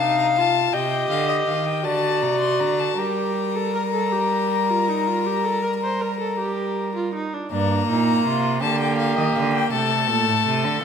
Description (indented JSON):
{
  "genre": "classical, baroque-style fugue for string quartet",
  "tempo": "53 BPM (dotted quarters)",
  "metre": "12/8",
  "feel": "straight",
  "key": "G minor",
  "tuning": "A4 = 440 Hz",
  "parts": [
    { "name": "warm violin", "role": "melody", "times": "0.0-10.8 s", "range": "Eb5 to C6", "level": "-25 LUFS", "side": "left 10 dB", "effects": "none" },
    { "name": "dark violin", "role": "second line", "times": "0.0-10.8 s", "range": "D4 to F5", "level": "-24 LUFS", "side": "left 4 dB", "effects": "none" },
    { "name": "warm viola", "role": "accompaniment", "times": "0.0-10.8 s", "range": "A3 to C5", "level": "-25 LUFS", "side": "right 3 dB", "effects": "none" },
    { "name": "rich cello", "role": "bass", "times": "0.0-10.8 s", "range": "G2 to G3", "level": "-26 LUFS", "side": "right 6 dB", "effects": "none" }
  ],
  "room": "wet recital hall reverb, RT60 1.4 s",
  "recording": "none",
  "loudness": "-19 LUFS",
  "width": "side -7 dB against mid",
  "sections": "0.0-7.5 A section; 7.5-10.8 B section",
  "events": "none",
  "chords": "0.0 N.C.; 0.7 Cm; 1.9 D7; 3.0 Gm; 9.7 Am",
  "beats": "0.74 1.85 | 2.98 4.12 5.25 6.38 | 7.51 8.62 9.72 10.83"
}